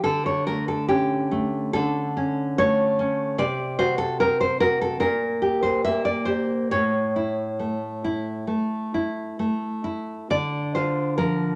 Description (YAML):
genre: romantic piece for solo classical guitar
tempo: 65-74 BPM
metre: 4/4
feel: rubato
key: unclear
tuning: A4 = 439 Hz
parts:
  - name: nylon-string guitar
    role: solo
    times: 0.0-11.6 s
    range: A2 to E5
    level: -24 LUFS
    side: equal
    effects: none
room: wet large studio reverb, RT60 1.2 s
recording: none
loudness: -24 LUFS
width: mono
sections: 0.0-11.6 A section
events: none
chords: 0.0 A7/D; 3.4 D7b13/C; 5.0 Gm/Bb; 6.7 A; 10.3 Dm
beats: | 0.03 0.89 1.74 2.58 | 3.40 4.21 5.03 5.85 | 6.73 7.60 8.50 9.40 | 10.31 11.16